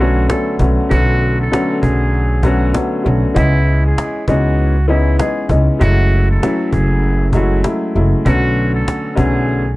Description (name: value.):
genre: hip hop, boom-bap hip-hop.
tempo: 98 BPM.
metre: 4/4.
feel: swing 62% on 16ths.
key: B dorian.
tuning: A4 = 440 Hz.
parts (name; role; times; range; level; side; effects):
trumpet with metal mute; melody; 0.0-9.7 s; E4 to A4; -22 LUFS; right 2 dB; high-pass filter, low-pass filter.
warm upright piano; accompaniment; 0.0-9.6 s; D3 to D#5; -17 LUFS; left 1 dB; cassette tape, high-pass filter, low-pass filter.
upright bass; bass; 0.0-9.8 s; F#1 to C#2; -15 LUFS; equal; none.
cajon; drums; 0.3-9.6 s; none; -19 LUFS; equal; vintage 12-bit sampler grit.
room: studio ambience.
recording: dark, warm production.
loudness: -12 LUFS.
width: side -19 dB against mid.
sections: 0.0-9.8 A section.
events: none.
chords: 0.0 Bm9; 3.4 C#m9; 5.8 F#m9; 8.3 Bm9.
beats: 0.30 | 0.91 1.52 2.13 2.75 | 3.36 3.97 4.58 5.19 | 5.81 6.42 7.03 7.64 | 8.26 8.87 9.48.